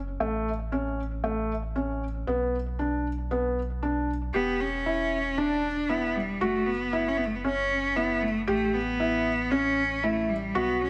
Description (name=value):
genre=piano and strings electronica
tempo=116 BPM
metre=4/4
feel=straight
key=E dorian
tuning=A4 = 440 Hz
part: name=warm sub bass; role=bass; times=0.0-10.9 s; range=E1 to B1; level=-37 LUFS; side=equal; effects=none
part: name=felt-muted upright piano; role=riff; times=0.2-10.8 s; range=A3 to G4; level=-31 LUFS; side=equal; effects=none
part: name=rich cello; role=melody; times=4.3-10.9 s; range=G3 to D4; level=-29 LUFS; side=equal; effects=none
room=moderate echo chamber reverb, RT60 1.4 s, small room ambience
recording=none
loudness=-28 LUFS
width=mono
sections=0.0-4.3 A section; 4.3-10.9 B section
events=filter sweep on felt piano 0.0-4.3; build-up 4.3-10.9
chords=0.2 A; 2.3 Bm; 4.3 Em7; 6.4 F#5; 8.5 A7